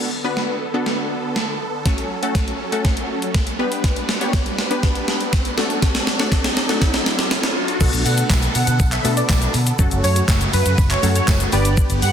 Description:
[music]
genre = dance-pop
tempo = 121 BPM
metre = 4/4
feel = straight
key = B minor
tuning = A4 = 440 Hz
[part]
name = funky polysynth comp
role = accompaniment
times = 0.0-12.1 s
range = F#3 to C#5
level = -24 LUFS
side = left 1 dB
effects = chorus, sidechain pumping
[part]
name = supersaw chords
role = sustained chords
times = 0.0-12.1 s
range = C#3 to B4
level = -27 LUFS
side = right 2 dB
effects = phaser, sidechain pumping
[part]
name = riser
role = sound effects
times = 1.8-7.8 s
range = none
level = -30 LUFS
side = equal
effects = none
[part]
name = gated 80s digital drum machine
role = drums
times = 0.4-12.1 s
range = crash cymbal, handclaps, hi-hat, kick drum, shaker, snare drum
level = -19 LUFS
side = equal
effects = gated reverb, gated reverb snare
[part]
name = fingered electric bass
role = bass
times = 7.8-12.1 s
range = F#1 to B2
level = -19 LUFS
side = equal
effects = sidechain pumping
[part]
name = airy dreamy lead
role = melody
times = 8.1-12.1 s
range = B4 to F#5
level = -24 LUFS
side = right 1 dB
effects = chorus, digital delay
[part]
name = tambourine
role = percussion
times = 8.1-12.1 s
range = none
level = -36 LUFS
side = right 13 dB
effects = none
[sound]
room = light reverb, digital ambience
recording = dense, heavily limited modern master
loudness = -16 LUFS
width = side -8 dB against mid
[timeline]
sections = 0.0-7.8 A section; 7.8-12.1 B section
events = build-up 0.0-7.8; drum fill 0.0-7.8; riser 1.8-7.8; drop 7.8-12.1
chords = 0.0 Bm7; 1.9 F#m; 3.6 G; 5.6 D; 7.8 Bm7; 9.8 F#m; 11.5 G

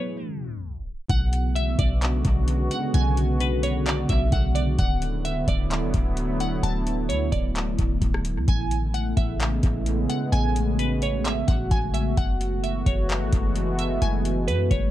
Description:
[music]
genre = hip hop, atmospheric cloud-rap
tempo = 130 BPM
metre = 4/4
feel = half-time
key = B dorian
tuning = A4 = 443 Hz
[part]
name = glassy wavetable pluck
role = melody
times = 0.0-14.9 s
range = B4 to A5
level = -31 LUFS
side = right 2 dB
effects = chorus, low-pass filter, analog delay
[part]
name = dark analog pad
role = sustained chords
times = 0.0-14.9 s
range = C#3 to G#4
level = -28 LUFS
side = equal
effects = chorus, sidechain pumping
[part]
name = clean 808-style bass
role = bass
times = 1.1-14.9 s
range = D1 to F#2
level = -24 LUFS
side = equal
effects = none
[part]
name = booming analog drum machine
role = drums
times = 1.1-14.9 s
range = handclaps, hi-hat, kick drum, rim click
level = -26 LUFS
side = equal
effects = vintage 12-bit sampler grit
[sound]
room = little or no reverb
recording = echo-heavy mix, tape stop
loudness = -21 LUFS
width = side -14 dB against mid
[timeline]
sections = 0.0-1.1 A section; 1.1-14.9 B section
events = break 0.0-1.1; tape stop 0.2-1.1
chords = 0.0 F#m11; 1.1 Bm69; 4.8 D69; 8.5 Amaj9; 12.2 F#m11

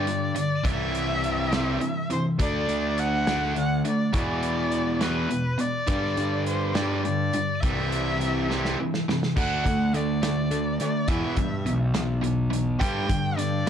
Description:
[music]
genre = indie rock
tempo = 69 BPM (dotted quarters)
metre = 6/8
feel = straight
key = D mixolydian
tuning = A4 = 440 Hz
[part]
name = rich erhu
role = melody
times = 0.0-13.7 s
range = B4 to G5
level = -29 LUFS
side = equal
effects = none
[part]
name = biting overdriven guitar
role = riff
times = 0.0-13.7 s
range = E2 to D4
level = -26 LUFS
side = equal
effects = none
[part]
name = fuzz picked electric bass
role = bass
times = 0.0-13.7 s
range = B1 to G2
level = -29 LUFS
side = equal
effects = overdrive
[part]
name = loose indie drum kit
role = drums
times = 0.1-13.7 s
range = crash cymbal, hi-hat, kick drum, snare drum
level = -29 LUFS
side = equal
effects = none
[sound]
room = little or no reverb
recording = dark, warm production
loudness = -23 LUFS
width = side -8 dB against mid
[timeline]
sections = 0.0-9.4 A section; 9.4-13.7 B section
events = drum fill 8.5-9.4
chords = 0.0 G5; 0.7 C; 2.4 D; 4.1 E5; 5.9 G5; 7.6 C; 9.4 D; 11.1 Em; 12.8 G5

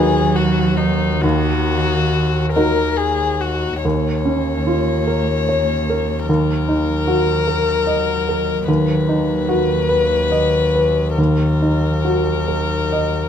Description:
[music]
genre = neoclassical piano and strings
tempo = 45-50 BPM (dotted quarters)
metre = 6/8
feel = rubato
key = Eb minor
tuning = A4 = 435 Hz
[part]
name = warm violin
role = melody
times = 0.0-13.3 s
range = D#4 to Db5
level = -21 LUFS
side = left 5 dB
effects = none
[part]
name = dark cello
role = second line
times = 0.0-13.3 s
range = Eb3 to Bb3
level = -26 LUFS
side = right 5 dB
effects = none
[part]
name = warm baby grand piano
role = accompaniment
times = 0.0-13.3 s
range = D#2 to Eb5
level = -19 LUFS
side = right 1 dB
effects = none
[part]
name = rich double bass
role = bass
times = 0.0-13.3 s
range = Eb2 to D#2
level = -21 LUFS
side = left 1 dB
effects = none
[sound]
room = little or no reverb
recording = close, detailed microphones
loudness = -15 LUFS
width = side -8 dB against mid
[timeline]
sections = 0.0-3.8 A section; 3.8-13.3 B section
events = none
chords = 0.0 B/D#; 1.2 Ebm; 3.8 Bbm/Eb; 6.3 Ebm; 8.7 B/D#; 11.2 Ebm

